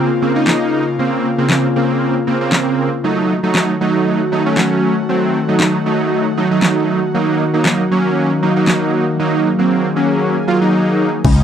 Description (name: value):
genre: dance-pop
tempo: 117 BPM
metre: 4/4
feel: straight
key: unclear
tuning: A4 = 440 Hz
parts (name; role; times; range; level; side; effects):
- big bright polysynth; accompaniment; 0.0-11.4 s; Db3 to F4; -15 LUFS; right 2 dB; chorus, sidechain pumping
- airy breathy pad; sustained chords; 0.0-11.4 s; Db3 to Ab4; -18 LUFS; left 3 dB; chorus, sidechain pumping
- smooth R&B drum kit; drums; 0.5-11.4 s; crash cymbal, handclaps, kick drum, snare drum; -15 LUFS; equal; none
- woody wave-folded pluck; arpeggios; 11.2-11.4 s; Db4; -22 LUFS; left 18 dB; chorus, sidechain pumping
- slap bass with an envelope filter; bass; 11.2-11.4 s; Db2; -10 LUFS; equal; sidechain pumping
room: light reverb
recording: dry, close 1970s-style studio recording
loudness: -13 LUFS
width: side -8 dB against mid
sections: 0.0-11.2 A section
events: none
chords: 0.0 Bbmadd9; 3.0 Gbm6; 7.1 Ebm